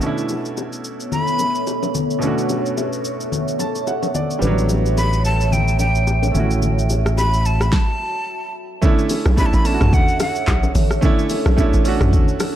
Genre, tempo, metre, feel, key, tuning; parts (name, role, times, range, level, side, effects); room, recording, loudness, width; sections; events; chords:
amapiano; 109 BPM; 4/4; swing 58% on 16ths; B minor; A4 = 440 Hz
clear concert grand piano; accompaniment; 0.0-12.6 s; B2 to A5; -24 LUFS; right 4 dB
deep dark ambient pad; sustained chords; 0.0-12.6 s; D3 to C#6; -26 LUFS; right 1 dB; chorus, built-in reverb, sidechain pumping
deep house drum kit; drums; 0.0-12.6 s; handclaps, hi-hat, kick drum, rim click, shaker, snare drum, toms; -20 LUFS; equal
congas and bongos; percussion; 0.0-12.6 s; -26 LUFS; left 6 dB
breathy bright jazz flute; melody; 1.1-10.7 s; F#5 to B5; -24 LUFS; equal; tape echo
modern bright fingered electric bass; bass; 4.4-7.7 s; A1; -18 LUFS; equal
tight log drum bass; bass; 9.3-12.4 s; A1 to B1; -17 LUFS; equal
light reverb; dark, warm production; -16 LUFS; side -11 dB against mid
0.0-8.8 A section; 8.8-12.6 B section
grand piano fill 3.3-4.4; stop 7.7-8.8
0.0 Bm11; 4.4 A13sus4; 6.3 F#m7/A; 8.8 Bm11